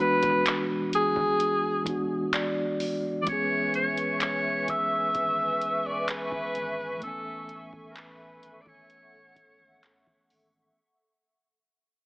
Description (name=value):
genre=contemporary R&B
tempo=64 BPM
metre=4/4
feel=straight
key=unclear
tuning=A4 = 440 Hz
part: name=clear alto saxophone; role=melody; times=0.0-10.3 s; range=G#4 to E5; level=-26 LUFS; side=equal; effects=none
part: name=mellow tine electric piano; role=accompaniment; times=0.0-10.8 s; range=E3 to G#5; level=-30 LUFS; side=equal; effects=fast stereo tremolo
part: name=warm sub bass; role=bass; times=0.0-10.7 s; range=D1 to A1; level=-52 LUFS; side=equal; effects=none
part: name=booming analog drum machine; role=drums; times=0.2-10.5 s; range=handclaps, hi-hat, kick drum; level=-31 LUFS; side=equal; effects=none
part: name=hollow soft pad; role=sustained chords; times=3.3-10.8 s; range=A4 to C#6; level=-36 LUFS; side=equal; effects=ensemble chorus
room=light reverb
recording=heavily compressed radio sound, multiband compression, AM radio sound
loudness=-25 LUFS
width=side -31 dB against mid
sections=0.0-10.8 A section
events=fade-out 0.3-10.8; tine electric piano fill 1.9-3.3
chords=0.0 E7; 3.3 C#m7; 7.0 Amaj7